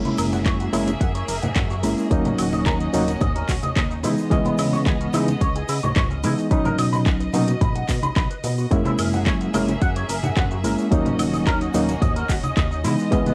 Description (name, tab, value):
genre	nu-disco, nu disco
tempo	109 BPM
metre	4/4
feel	straight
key	F# mixolydian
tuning	A4 = 440 Hz
part	bright reed electric piano	accompaniment	0.0-13.3 s	E3 to D#5	-25 LUFS	equal	overdrive, fast tremolo, cassette tape, analog delay
part	bright studio violin section	sustained chords	0.0-13.3 s	A#3 to E5	-36 LUFS	equal	sidechain pumping, cassette tape
part	chorused synth bass	bass	0.0-13.2 s	D#1 to C#3	-29 LUFS	equal	none
part	electric guitar with an envelope filter	riff	0.1-13.3 s	G#3 to B5	-32 LUFS	equal	analog chorus, low-pass filter, cassette tape
part	house drum kit	drums	0.1-13.3 s	handclaps, hi-hat, shaker, woodblock	-33 LUFS	equal	cassette tape
part	congas and tube shaker	percussion	0.1-13.3 s	none	-32 LUFS	equal	none
part	electronic kick drum	drums	0.5-13.2 s	none	-24 LUFS	equal	cassette tape
room	light reverb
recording	home recording on cassette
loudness	-21 LUFS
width	mono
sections	0.0-13.3 A section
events	filter sweep on clean electric guitar 0.0-13.3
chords	0.0 F#9; 2.1 D#m7; 4.0 C#m9; 6.5 B; 8.7 F#9; 10.9 D#m7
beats	0.46 1.01 1.56 | 2.11 2.66 3.21 3.76 | 4.31 4.86 5.41 5.96 | 6.51 7.07 7.62 8.17 | 8.72 9.27 9.82 10.37 | 10.92 11.47 12.02 12.57 | 13.12